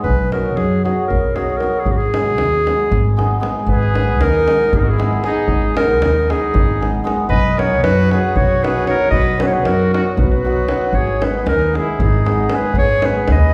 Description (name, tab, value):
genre	balkan folk, Balkan wedding band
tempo	231 BPM (eighths)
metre	7/8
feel	straight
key	G# minor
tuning	A4 = 441 Hz
part	clear clarinet	melody	0.0-13.5 s	F#4 to D#5	-21 LUFS	equal	none
part	hammered dulcimer	accompaniment	0.0-13.5 s	F#3 to G#4	-24 LUFS	equal	none
part	upright bass	bass	0.0-13.5 s	G#1 to F#2	-21 LUFS	equal	none
part	davul	percussion	0.0-13.5 s	none	-23 LUFS	equal	none
part	clear trumpet	second line	3.7-13.5 s	D#4 to B4	-28 LUFS	equal	none
room	wet recital hall reverb, RT60 1.7 s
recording	recorded in a church or concert hall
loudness	-16 LUFS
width	mono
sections	0.0-3.7 A section; 3.7-13.5 A section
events	none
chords	0.1 B; 1.9 G#m; 7.3 B; 10.9 G#m